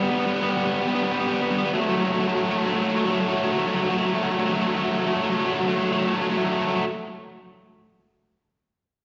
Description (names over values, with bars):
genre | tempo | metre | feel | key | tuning
rock | 41-52 BPM (dotted quarters) | 6/8 | straight | unclear | A4 = 440 Hz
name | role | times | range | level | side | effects
raw garage guitar | solo | 0.0-6.8 s | F#3 to B3 | -24 LUFS | equal | overdrive
room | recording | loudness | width
wet recital hall reverb, RT60 1.7 s | recorded in a church or concert hall, nothing above 7.7 kHz | -23 LUFS | mono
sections
0.0-6.8 A section; 6.8-9.0 B section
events
slowing down 1.7-6.8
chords
0.0 G; 1.7 F#m; 6.8 N.C.